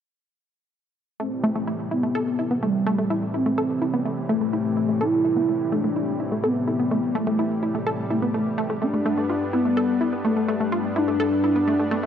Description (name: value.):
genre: techno.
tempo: 126 BPM.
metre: 4/4.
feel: straight.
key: A minor.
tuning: A4 = 440 Hz.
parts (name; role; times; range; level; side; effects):
expressive synth lead; melody; 1.2-12.1 s; G3 to E4; -23 LUFS; left 1 dB; lush chorus, tape echo.
lush unison pad; sustained chords; 1.2-12.1 s; G2 to D4; -29 LUFS; right 1 dB; chorus.
wide unison pluck; arpeggios; 1.2-12.1 s; A3 to A4; -26 LUFS; right 1 dB; tape echo.
room: moderate lush hall reverb, RT60 3.1 s.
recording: dry, gritty hardware recording.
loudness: -21 LUFS.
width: side -8 dB against mid.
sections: 1.2-12.1 A section.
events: filter sweep on analog synth lead 1.2-12.1.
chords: 1.2 Am7; 8.8 G.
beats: | 1.20 1.68 2.15 2.63 | 3.10 3.58 4.06 4.53 | 5.01 5.49 5.96 6.44 | 6.91 7.39 7.87 8.34 | 8.82 9.29 9.77 10.25 | 10.72 11.20 11.68.